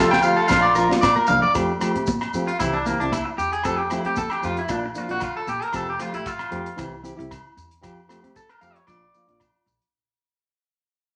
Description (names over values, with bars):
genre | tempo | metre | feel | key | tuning
highlife guitar band | 114 BPM | 4/4 | swing 53% on 16ths | F major | A4 = 441 Hz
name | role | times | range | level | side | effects
raspy tenor saxophone | melody | 0.0-1.2 s | F4 | -26 LUFS | equal | none
nylon-string guitar | accompaniment | 0.0-9.4 s | E3 to G4 | -29 LUFS | equal | none
electric guitar at the edge of break-up | arpeggios | 0.0-9.8 s | Bb3 to G5 | -24 LUFS | equal | none
upright bass | bass | 0.0-9.8 s | F1 to F3 | -38 LUFS | equal | none
tight funk drum kit | drums | 0.1-9.9 s | hi-hat, kick drum, rim click, snare drum | -31 LUFS | equal | none
agogo bells | percussion | 0.1-9.5 s | none | -32 LUFS | equal | none
maracas | percussion | 0.1-9.8 s | none | -42 LUFS | equal | none
congas | percussion | 0.5-5.6 s | none | -33 LUFS | equal | none
room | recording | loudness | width
moderate large studio reverb, RT60 1.2 s | nothing above 10.4 kHz | -22 LUFS | mono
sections
0.0-1.5 A section; 1.5-9.9 B section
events
drum fill 0.9-1.5; fade-out 1.5-9.9; clean electric guitar solo 1.5-9.9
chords
0.5 Bb; 1.5 Fadd9; 2.6 C; 3.6 Fadd9; 4.7 Bb; 5.7 Fadd9; 6.8 C; 7.8 Fadd9; 8.9 Bb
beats
0.49 1.02 | 1.54 2.06 2.59 3.11 | 3.63 4.16 4.68 5.21 | 5.73 6.26 6.78 7.30 | 7.83 8.35 8.88 9.40